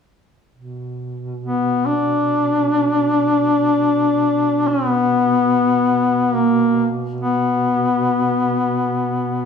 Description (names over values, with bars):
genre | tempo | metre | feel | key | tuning
caucasian folk, Caucasian lament | free time | none | none | B harmonic minor | A4 = 439 Hz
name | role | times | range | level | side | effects
dark duduk | drone | 0.6-9.5 s | B2 | -26 LUFS | right 4 dB | none
warm duduk | melody | 1.4-9.5 s | A#3 to D4 | -16 LUFS | left 2 dB | slapback echo
room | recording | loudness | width
moderate recital hall reverb, RT60 1.5 s | none | -15 LUFS | side -6 dB against mid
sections
0.6-9.5 A section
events
none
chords
none